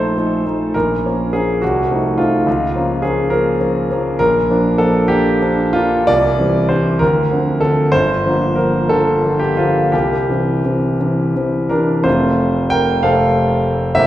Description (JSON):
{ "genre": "classical, romantic character piece for solo piano", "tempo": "55-72 BPM (dotted quarters)", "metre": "6/8", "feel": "rubato", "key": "Bb minor, F major from 4.2 s", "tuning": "A4 = 441 Hz", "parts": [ { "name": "warm concert grand piano", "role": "solo", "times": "0.0-14.1 s", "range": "F1 to G5", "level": "-13 LUFS", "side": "equal", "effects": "none" } ], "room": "wet recital hall reverb, RT60 1.5 s", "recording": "heard from further back in the room", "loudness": "-13 LUFS", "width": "side -13 dB against mid", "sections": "0.0-12.1 A section; 12.1-14.1 B section", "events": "none", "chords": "0.0 F7/Bb; 0.7 Bbm; 1.6 F7/C; 2.5 Bbm/Db; 4.2 Bb; 6.1 C; 7.0 Dm7; 7.9 Gm7; 9.9 C; 12.1 F" }